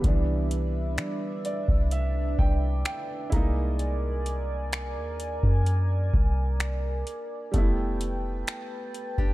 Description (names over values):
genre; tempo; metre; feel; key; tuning
contemporary R&B; 64 BPM; 4/4; straight; unclear; A4 = 440 Hz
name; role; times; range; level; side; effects
warm baby grand piano; accompaniment; 0.0-9.3 s; D3 to Bb5; -33 LUFS; right 2 dB; none
chorused pulse-width pad; sustained chords; 0.0-9.3 s; D4 to A5; -34 LUFS; right 1 dB; none
soft 808-style bass; bass; 0.0-9.3 s; F1 to G3; -27 LUFS; equal; none
booming analog drum machine; drums; 0.0-9.3 s; finger snaps, hi-hat, kick drum; -25 LUFS; equal; none
fingerpicked acoustic archtop guitar; arpeggios; 9.2-9.3 s; D4 to G4; -37 LUFS; left 4 dB; none
room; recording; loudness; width
digital ambience; dark, warm production; -24 LUFS; side -18 dB against mid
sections
0.0-9.3 A section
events
grand piano fill 1.0-3.8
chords
0.0 Cmaj9; 3.3 C7alt; 7.5 Fmaj9#11